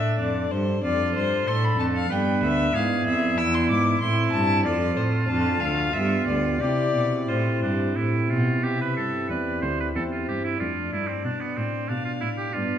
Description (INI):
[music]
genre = classical, baroque-style sonata movement with continuo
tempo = 93 BPM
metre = 3/4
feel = rubato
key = C major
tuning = A4 = 441 Hz
[part]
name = dark violin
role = melody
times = 0.0-12.8 s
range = C5 to E6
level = -28 LUFS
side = left 5 dB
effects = none
[part]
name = bright oboe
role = second line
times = 0.0-12.8 s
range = B3 to C5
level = -29 LUFS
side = right 4 dB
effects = none
[part]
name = pipe organ, principal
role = accompaniment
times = 0.0-12.8 s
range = D2 to D5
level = -27 LUFS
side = equal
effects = none
[part]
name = rich cello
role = bass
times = 0.0-12.8 s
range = D2 to C3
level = -26 LUFS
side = right 1 dB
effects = none
[sound]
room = wet recital hall reverb, RT60 1.4 s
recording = none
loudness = -22 LUFS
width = side -9 dB against mid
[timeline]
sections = 0.0-8.6 A section; 8.6-12.8 B section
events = none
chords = 0.0 Dm/F; 0.8 Dm7/F; 2.1 G; 2.7 E7; 4.0 Am; 4.6 F; 5.3 Dm/F; 5.9 G7; 6.6 C; 10.0 C/E; 10.6 Dm/F